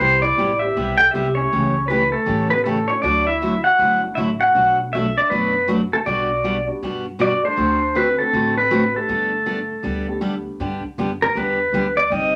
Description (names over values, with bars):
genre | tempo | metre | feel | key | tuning
country, western swing | 159 BPM | 4/4 | swing 64% on 8ths | G major | A4 = 440 Hz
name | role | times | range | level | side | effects
pedal steel guitar | melody | 0.0-12.3 s | A4 to G5 | -20 LUFS | equal | none
breathy clarinet | second line | 0.0-10.2 s | A3 to A4 | -32 LUFS | equal | none
picked steel-string acoustic guitar | accompaniment | 0.0-12.3 s | B2 to A4 | -26 LUFS | equal | none
upright bass | bass | 0.0-12.4 s | G1 to A2 | -32 LUFS | equal | none
dark upright piano | accompaniment | 0.6-10.6 s | G3 to A4 | -34 LUFS | equal | none
room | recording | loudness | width
wet club reverb, RT60 0.5 s | none | -19 LUFS | mono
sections
0.0-10.6 A section; 10.6-12.4 B section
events
pedal steel guitar solo 10.6-12.4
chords
0.0 Cmaj7; 1.5 A7/C#; 3.0 Dadd9; 4.6 Bm7; 6.1 Gmaj7/B; 7.6 D7; 9.1 Gadd9; 10.6 G